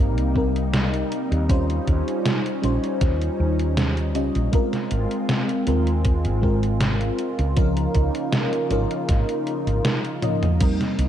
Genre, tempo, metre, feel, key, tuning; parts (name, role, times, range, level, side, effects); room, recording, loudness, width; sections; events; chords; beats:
vaporwave; 79 BPM; 4/4; straight; A4 = 440 Hz
FM electric piano with soft pad layer; accompaniment; 0.0-11.1 s; F3 to Eb5; -25 LUFS; left 1 dB; phaser, analog chorus, tape echo
lush unison pad; sustained chords; 0.0-11.1 s; C3 to F4; -30 LUFS; equal; chorus, phaser
woody fretless electric bass; bass; 0.0-11.1 s; G1 to Eb2; -23 LUFS; equal
detuned 8-bit digital drum machine; drums; 0.2-11.1 s; crash cymbal, hi-hat, snare drum, toms; -25 LUFS; equal; overdrive, gated reverb
electronic kick drum; drums; 0.4-10.8 s; -20 LUFS; equal
light reverb; cassette tape; -20 LUFS; side -10 dB against mid
0.0-10.6 A section
kick drops out 9.8-10.6; drum fill 10.2-10.6
0.0 Cm7; 1.5 Eb13; 4.5 Ab69; 7.6 Db69
0.74 | 1.50 2.25 3.01 3.77 | 4.53 5.29 6.05 6.81 | 7.57 8.33 9.09 9.85 | 10.61